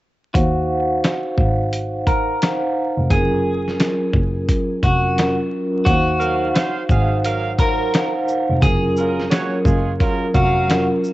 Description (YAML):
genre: hip hop, boom-bap hip-hop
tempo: 87 BPM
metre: 4/4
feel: swing 63% on 16ths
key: Eb dorian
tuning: A4 = 439 Hz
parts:
  - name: clean electric guitar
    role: melody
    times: 0.3-10.9 s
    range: Gb4 to Bb4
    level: -23 LUFS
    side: equal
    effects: low-pass filter, cassette tape, analog delay
  - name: vibraphone with soft mallets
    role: accompaniment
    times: 0.3-11.1 s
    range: Gb3 to Gb5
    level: -21 LUFS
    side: equal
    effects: low-pass filter, cassette tape
  - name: dark double bass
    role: bass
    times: 0.3-10.8 s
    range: F1 to Eb2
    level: -21 LUFS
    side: equal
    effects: none
  - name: dusty soul sampler-style drum kit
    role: drums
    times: 0.3-11.1 s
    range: hi-hat, kick drum, shaker, snare drum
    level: -20 LUFS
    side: equal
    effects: cassette tape
  - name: warm horn section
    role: stabs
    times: 6.2-10.9 s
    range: Gb3 to F5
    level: -25 LUFS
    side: right 4 dB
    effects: cassette tape, analog delay
room: light reverb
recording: home recording on cassette, vinyl crackle, nothing above 8.0 kHz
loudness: -16 LUFS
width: side -16 dB against mid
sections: 0.3-5.9 A section; 5.9-11.1 B section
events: filter sweep 0.3-5.9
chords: 0.3 Ebm69; 3.1 Gbmaj7; 5.9 Ebm69; 8.6 Gbmaj7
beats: | 0.35 1.04 1.73 2.42 | 3.11 3.80 4.49 5.17 | 5.87 6.55 7.24 7.93 | 8.62 9.31 10.00 10.69